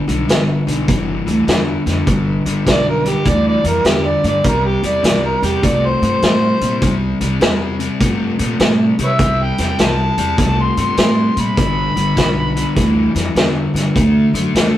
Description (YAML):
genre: electric blues shuffle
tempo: 101 BPM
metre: 4/4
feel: swing 66% on 8ths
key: G major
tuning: A4 = 440 Hz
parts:
  - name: crunchy overdriven guitar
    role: riff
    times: 0.0-14.8 s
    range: G2 to A3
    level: -19 LUFS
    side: left 2 dB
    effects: none
  - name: upright bass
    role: bass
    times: 0.1-14.8 s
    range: G1 to C3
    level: -19 LUFS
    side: right 1 dB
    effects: none
  - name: vintage drum kit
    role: drums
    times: 0.1-14.7 s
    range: hi-hat, kick drum, snare drum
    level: -18 LUFS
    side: equal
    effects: none
  - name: overdriven harmonica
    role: melody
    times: 2.7-13.1 s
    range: G4 to C6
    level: -18 LUFS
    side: right 1 dB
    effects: none
room: moderate stone room reverb, RT60 1.2 s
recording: rough rehearsal-room recording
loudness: -13 LUFS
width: side -12 dB against mid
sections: 0.0-14.8 A section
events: none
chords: 0.0 G; 4.4 C; 11.6 G; 13.9 D